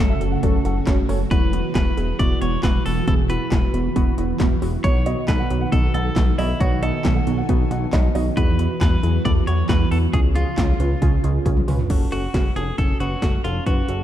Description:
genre	synth-pop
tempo	136 BPM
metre	4/4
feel	straight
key	unclear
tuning	A4 = 441 Hz
part	clean electric guitar	melody	0.0-14.0 s	E4 to D5	-29 LUFS	equal	tape echo
part	warbly dusty pluck	accompaniment	0.0-14.0 s	B3 to B4	-27 LUFS	right 2 dB	chorus
part	string machine, cellos	sustained chords	0.0-11.9 s	C#3 to G#5	-27 LUFS	right 2 dB	ensemble chorus
part	chorused synth bass	bass	0.0-14.0 s	E1 to E2	-23 LUFS	equal	none
part	dark baby grand piano	second line	0.1-1.2, 4.8-8.2 s	C#5 to F#5	-30 LUFS	right 2 dB	tape echo
part	80s electronic pad drums	drums	0.2-14.0 s	crash cymbal, handclaps, hi-hat, kick drum, snare drum, toms	-21 LUFS	equal	gated reverb on snare and toms
room	light reverb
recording	dark, warm production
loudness	-17 LUFS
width	side -11 dB against mid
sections	0.0-11.9 A section; 11.9-14.0 B section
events	drum fill 11.5-11.9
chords	0.0 F#m; 1.3 Esus2; 4.8 B; 8.4 Esus2; 10.1 C#7; 11.9 F#m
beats	0.43 0.87 | 1.31 1.75 2.19 2.63 | 3.08 3.52 3.96 4.40 | 4.84 5.28 5.72 6.16 | 6.61 7.05 7.49 7.93 | 8.37 8.81 9.25 9.69 | 10.13 10.58 11.02 11.46 | 11.90 12.34 12.78 13.22 | 13.66

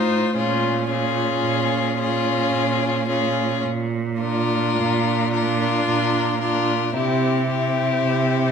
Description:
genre	classical, slow romantic movement for string quartet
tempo	55 BPM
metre	3/4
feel	rubato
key	unclear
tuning	A4 = 440 Hz
part	rich violin	melody	0.0-8.5 s	G4 to C5	-26 LUFS	left 10 dB	none
part	warm violin	second line	0.0-8.5 s	E4 to F4	-24 LUFS	left 4 dB	none
part	rich viola	accompaniment	0.0-8.5 s	C4 to Eb4	-25 LUFS	right 1 dB	none
part	warm cello	bass	0.0-8.5 s	A2 to C3	-24 LUFS	right 5 dB	none
room	wet recital hall reverb, RT60 1.4 s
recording	minimal, uncompressed stereo recording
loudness	-19 LUFS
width	side -6 dB against mid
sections	0.0-8.5 A section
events	none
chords	0.4 Bbm7; 3.6 Bb; 7.0 C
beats	| 0.36 1.45 2.54 | 3.65 4.78 5.87 | 6.95 8.04

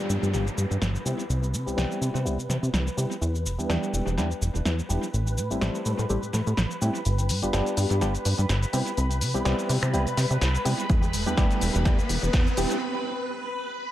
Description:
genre	filtered disco house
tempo	125 BPM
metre	4/4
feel	swing 55% on 16ths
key	C major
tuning	A4 = 442 Hz
part	barky reed electric piano	accompaniment	0.0-12.8 s	G3 to G4	-30 LUFS	equal	fast tremolo, phaser, sidechain pumping, low-pass filter, analog delay
part	phased string machine	sustained chords	0.0-13.9 s	B4 to B5	-35 LUFS	equal	ensemble chorus, phaser, sidechain pumping, low-pass filter
part	downlifter and riser	sound effects	0.0-3.2, 9.3-12.8 s	none	-36 LUFS	right 2 dB	none
part	plucky analog bass	bass	0.1-12.7 s	E1 to C3	-25 LUFS	equal	sidechain pumping, low-pass filter
part	punchy analog drum machine	drums	0.1-12.8 s	finger snaps, hi-hat, shaker, snare drum	-31 LUFS	equal	high-pass filter on snare, sidechain pumping on hats, high-pass filter on hats, sidechain pumping on perc, high-pass filter on perc, high-pass filter on room, analog delay
part	electronic kick drum	drums	10.9-12.4 s	none	-23 LUFS	equal	none
room	light reverb, digital ambience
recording	echo-heavy mix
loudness	-23 LUFS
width	side -13 dB against mid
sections	0.0-7.1 A section; 7.1-13.9 B section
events	filter sweep 0.0-7.1, 7.1-13.9; build-up 7.1-13.9; riser 9.3-12.8; break 12.8-13.9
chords	0.0 G7; 1.1 Cmaj7; 3.2 Em7; 5.1 Am7; 7.1 G7; 8.7 Cmaj7; 10.9 Em7; 12.8 N.C.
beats	0.34 0.81 | 1.29 1.77 2.25 2.73 | 3.21 3.69 4.17 4.66 | 5.13 5.62 6.09 6.58 | 7.05 7.54 8.02 8.49 | 8.97 9.46 9.94 10.41 | 10.89 11.38 11.86 12.34 | 12.81 13.29 13.78

